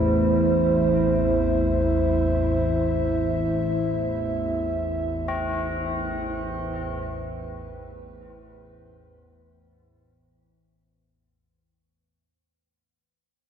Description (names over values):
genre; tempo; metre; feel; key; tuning
dark ambient drone; free time; none; none; A minor; A4 = 438 Hz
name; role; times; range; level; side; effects
dark analog pad; sustained chords; 0.0-11.2 s; A3 to E5; -24 LUFS; right 1 dB; chorus, shimmer reverb
tubular bells; arpeggios; 0.0-11.2 s; C4 to E4; -35 LUFS; left 2 dB; diffuse ambient delay, shimmer reverb
analog drone; drone; 0.0-11.3 s; A1 to E2; -26 LUFS; equal; chorus
room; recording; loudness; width
wet huge ambient reverb, RT60 7.7 s; none; -22 LUFS; side -8 dB against mid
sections
0.0-11.2 A section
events
fade-out 0.8-11.2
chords
0.0 Am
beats
free time